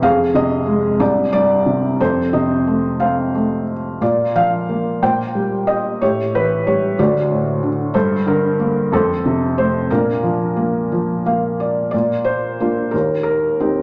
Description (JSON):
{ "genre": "classical, lyrical solo piano", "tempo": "60 BPM (dotted quarters)", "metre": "6/8", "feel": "rubato", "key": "Bb major", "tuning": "A4 = 439 Hz", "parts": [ { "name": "felt-muted upright piano", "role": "solo", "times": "0.0-13.8 s", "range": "C2 to G5", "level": "-18 LUFS", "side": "equal", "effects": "none" } ], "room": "wet recital hall reverb, RT60 1.5 s", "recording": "none", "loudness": "-18 LUFS", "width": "mono", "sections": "0.0-11.9 A section; 11.9-13.8 A section", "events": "felt piano fill 10.9-11.9", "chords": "0.0 Fm; 1.0 C5; 2.0 F; 4.0 Bb5; 5.0 Eb6/Bb; 6.0 A5; 7.0 D; 7.9 Gmadd9; 8.9 F; 9.9 Bb; 12.9 Eb6" }